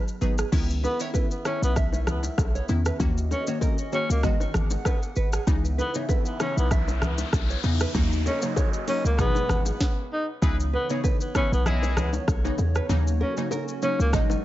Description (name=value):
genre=afrobeats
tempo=97 BPM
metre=4/4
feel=swing 55% on 16ths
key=C# dorian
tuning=A4 = 439 Hz
part: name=nylon-string guitar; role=riff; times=0.0-14.3 s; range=G#4 to E5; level=-35 LUFS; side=right 6 dB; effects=digital delay
part: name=afro-pop drum kit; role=drums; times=0.1-14.4 s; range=crash cymbal, hi-hat, kick drum, rim click, shaker, snare drum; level=-27 LUFS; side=equal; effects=none
part: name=glassy wavetable pluck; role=accompaniment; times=0.2-14.4 s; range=B2 to G#4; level=-31 LUFS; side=left 2 dB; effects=chorus
part: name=warm 808-style bass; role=bass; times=0.2-14.4 s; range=G#1 to E2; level=-25 LUFS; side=equal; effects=none
part: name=hollow soft pad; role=sustained chords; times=0.5-14.4 s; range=E3 to F#5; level=-37 LUFS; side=right 1 dB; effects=chorus
part: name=congas and bongos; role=percussion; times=0.5-14.4 s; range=none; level=-34 LUFS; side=left 4 dB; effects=none
part: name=breathy tenor saxophone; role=melody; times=0.8-14.1 s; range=A#3 to D#4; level=-30 LUFS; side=equal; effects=digital delay
part: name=noise sweep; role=sound effects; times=6.1-9.8 s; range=none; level=-37 LUFS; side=left 1 dB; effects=none
part: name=clear horn section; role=second line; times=10.4-12.1 s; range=G#3 to C#5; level=-33 LUFS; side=left 2 dB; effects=none
room=small room ambience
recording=nothing above 7.8 kHz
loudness=-22 LUFS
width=side -14 dB against mid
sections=0.5-10.4 A section; 10.4-14.4 B section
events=noise sweep 6.1-10.4; stop 9.8-10.4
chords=0.0 G#m7; 0.5 C#m9; 3.0 D#m7; 4.2 G#m7; 5.5 C#m9; 7.9 D#m7; 9.2 G#m7; 10.4 C#m9; 12.9 D#m7